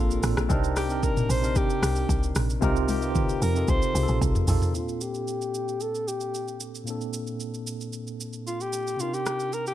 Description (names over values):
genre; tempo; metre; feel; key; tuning
amapiano; 113 BPM; 4/4; straight; unclear; A4 = 439 Hz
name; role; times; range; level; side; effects
breathy alto saxophone; melody; 0.0-9.7 s; F4 to C5; -30 LUFS; left 1 dB; low-pass filter, tape echo
tine electric piano; accompaniment; 0.0-9.7 s; Bb2 to C5; -30 LUFS; right 1 dB; medium stereo tremolo, low-pass filter
woody log drum bass; bass; 0.0-4.6 s; A1 to F2; -27 LUFS; equal; none
afro-pop drum kit; drums; 0.1-9.7 s; hi-hat, kick drum, rim click, shaker, toms; -28 LUFS; equal; none
room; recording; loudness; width
little or no reverb; none; -24 LUFS; side -12 dB against mid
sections
0.0-4.7 A section; 4.7-9.7 B section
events
drop 0.0-4.7; drum fill 2.6-4.7; filter sweep 4.7-9.7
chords
0.0 Bbmaj7; 0.5 Cm9; 2.6 F9sus4/C; 4.7 Bbmaj7; 9.0 Cm9